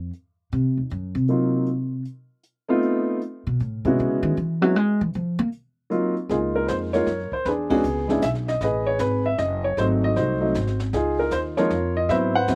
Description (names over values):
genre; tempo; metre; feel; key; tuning
jazz piano trio; 156 BPM; 3/4; swing 66% on 8ths; Db major; A4 = 440 Hz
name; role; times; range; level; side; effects
upright bass; bass; 0.0-12.6 s; Gb1 to Bb3; -27 LUFS; equal; none
jazz brush drum kit; drums; 0.1-12.6 s; brushed snare drum, hi-hat, kick drum, ride cymbal, snare drum; -39 LUFS; equal; none
dark upright piano; melody; 1.3-12.6 s; F3 to Gb5; -24 LUFS; equal; none
room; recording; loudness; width
little or no reverb; recorded outdoors, with no room sound; -23 LUFS; mono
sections
0.0-6.3 A section; 6.3-12.6 B section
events
upright bass solo 0.0-6.3; band accent 7.6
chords
0.0 N.C.; 0.5 Ebm69; 1.7 N.C.; 2.8 F7#11; 4.0 E69; 5.1 Fsus4; 6.3 Db6; 7.5 E13; 8.6 Asus2; 9.8 Ab7b9; 10.9 Db69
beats
0.14 | 0.52 0.91 1.29 | 1.68 2.06 2.44 | 2.83 3.21 3.60 | 3.98 4.37 4.75 | 5.14 5.52 5.91 | 6.29 6.68 7.07 | 7.45 7.84 8.23 | 8.61 9.00 9.39 | 9.78 10.16 10.55 | 10.94 11.32 11.71 | 12.10 12.48